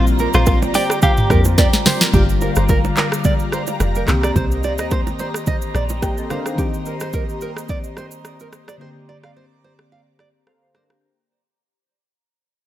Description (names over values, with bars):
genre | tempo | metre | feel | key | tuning
afrobeats | 108 BPM | 4/4 | swing 55% on 16ths | unclear | A4 = 440 Hz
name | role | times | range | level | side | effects
direct-recorded clean electric guitar | melody | 0.0-1.4 s | F4 to G4 | -23 LUFS | equal | digital delay
glassy digital keys | accompaniment | 0.0-11.2 s | D3 to G5 | -25 LUFS | left 4 dB | chorus
airy breathy pad | sustained chords | 0.0-11.0 s | G4 to Bb5 | -28 LUFS | right 1 dB | chorus, phaser, sidechain pumping
deep log drum bass | bass | 0.0-6.1 s | F1 to F2 | -19 LUFS | equal | none
afro-pop drum kit | drums | 0.1-11.0 s | handclaps, hi-hat, kick drum, rim click, shaker, snare drum, toms | -18 LUFS | equal | none
nylon-string guitar | riff | 0.2-10.8 s | G4 to F5 | -26 LUFS | right 4 dB | digital delay
bongos and congas | percussion | 0.2-6.4 s | none | -26 LUFS | right 6 dB | none
room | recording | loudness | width
little or no reverb | none | -15 LUFS | side -13 dB against mid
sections
0.0-2.1 A section; 2.1-11.0 B section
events
drum fill 1.6-2.1; fade-out 2.1-11.0; synth keys fill 5.7-6.6, 10.2-11.0; break 9.9-11.0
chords
0.0 Bb69; 2.1 Gm7; 4.1 Cm7; 6.6 Eb6; 8.8 Bb69